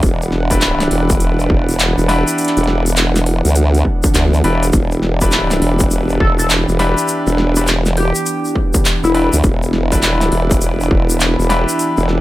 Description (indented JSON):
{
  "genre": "glitch hop",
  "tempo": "102 BPM",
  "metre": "4/4",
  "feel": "swing 64% on 16ths",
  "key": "E minor",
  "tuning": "A4 = 440 Hz",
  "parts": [
    { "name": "warm analog pad", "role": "sustained chords", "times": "0.0-12.2 s", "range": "E3 to F#5", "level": "-21 LUFS", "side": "right 2 dB", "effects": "chorus, sidechain pumping" },
    { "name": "formant-sweep wobble bass", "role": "bass", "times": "0.0-12.2 s", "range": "E1 to D2", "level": "-15 LUFS", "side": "equal", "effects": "chorus, overdrive" },
    { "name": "dubstep drum kit", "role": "drums", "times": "0.0-12.2 s", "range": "handclaps, hi-hat, snare drum", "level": "-19 LUFS", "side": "equal", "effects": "small room ambience" },
    { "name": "electronic kick drum", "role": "drums", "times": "0.0-11.1 s", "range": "none", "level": "-16 LUFS", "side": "equal", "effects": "distortion, small room ambience" },
    { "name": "tube shaker", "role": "percussion", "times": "0.0-12.1 s", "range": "none", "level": "-25 LUFS", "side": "left 3 dB", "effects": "none" },
    { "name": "bright grand piano", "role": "stabs", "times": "0.5-12.2 s", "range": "D4 to B4", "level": "-20 LUFS", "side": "left 2 dB", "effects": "sidechain pumping, dub echo" },
    { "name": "sync lead", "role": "melody", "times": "6.2-9.3 s", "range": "E4 to A4", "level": "-20 LUFS", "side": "left 2 dB", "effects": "lush chorus, dub echo" }
  ],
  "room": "light reverb",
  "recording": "none",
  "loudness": "-12 LUFS",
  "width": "side -16 dB against mid",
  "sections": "0.0-12.2 A section",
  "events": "none",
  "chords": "0.0 Em7"
}